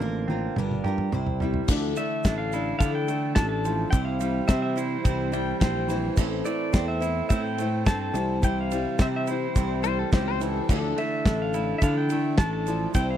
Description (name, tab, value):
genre	folk rock and heartland rock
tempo	107 BPM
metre	4/4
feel	straight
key	D minor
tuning	A4 = 437 Hz
part	picked old ladder-braced acoustic guitar	accompaniment	0.0-13.2 s	A2 to C5	-31 LUFS	left 8 dB	none
part	electric guitar through a small old amp	riff	0.0-13.2 s	G2 to G4	-32 LUFS	right 12 dB	none
part	picked electric bass	bass	0.0-13.2 s	G1 to D3	-28 LUFS	equal	none
part	damped 70s drum kit	drums	0.0-13.1 s	crash cymbal, kick drum, ride cymbal, snare drum, toms	-25 LUFS	equal	none
part	mellow tonewheel organ	sustained chords	1.7-13.2 s	E3 to D5	-39 LUFS	right 3 dB	none
part	egg shaker	percussion	1.7-13.1 s	none	-43 LUFS	right 28 dB	none
part	pedal steel guitar	melody	2.0-13.2 s	C5 to A5	-31 LUFS	left 2 dB	none
part	pedal steel guitar	second line	5.3-6.2, 9.8-11.0 s	G4 to G5	-31 LUFS	left 16 dB	none
room	little or no reverb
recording	dry, close 1970s-style studio recording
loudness	-23 LUFS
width	side -10 dB against mid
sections	0.0-1.7 A section; 1.7-13.2 B section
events	drum fill 0.0-1.7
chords	0.0 Bbadd9; 0.6 Gm7; 1.1 C; 1.7 Dmadd9; 3.9 C; 6.2 Am; 8.1 C; 10.7 Dmadd9